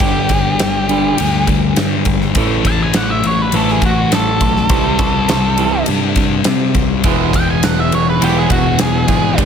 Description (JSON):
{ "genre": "quiet-loud alternative rock", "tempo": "102 BPM", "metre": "4/4", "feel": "straight", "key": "unclear", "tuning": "A4 = 440 Hz", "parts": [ { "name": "octave-fuzz lead guitar", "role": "melody", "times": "0.0-9.4 s", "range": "F#4 to A5", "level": "-19 LUFS", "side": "right 2 dB", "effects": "distortion, digital delay" }, { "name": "twangy electric guitar", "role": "arpeggios", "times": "0.0-9.5 s", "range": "G2 to B3", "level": "-23 LUFS", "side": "right 9 dB", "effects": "none" }, { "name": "sludgy distorted guitar", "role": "riff", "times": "0.0-9.5 s", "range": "E2 to C4", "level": "-18 LUFS", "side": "left 10 dB", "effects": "overdrive" }, { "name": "growling picked electric bass", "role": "bass", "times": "0.0-9.5 s", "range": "E1 to C3", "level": "-19 LUFS", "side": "right 1 dB", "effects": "overdrive" }, { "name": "huge arena drum kit", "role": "drums", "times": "0.0-9.5 s", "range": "kick drum, ride cymbal, snare drum", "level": "-17 LUFS", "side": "equal", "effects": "none" }, { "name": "distorted electric guitar", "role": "riff", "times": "7.0-9.5 s", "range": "G2 to E4", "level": "-20 LUFS", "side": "right 14 dB", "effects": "distortion" } ], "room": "light reverb, small room ambience", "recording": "none", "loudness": "-12 LUFS", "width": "side -7 dB against mid", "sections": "0.0-9.5 A section", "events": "lead electric guitar solo 0.0-9.5", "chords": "0.0 G5; 2.4 A5; 4.7 C; 7.0 E" }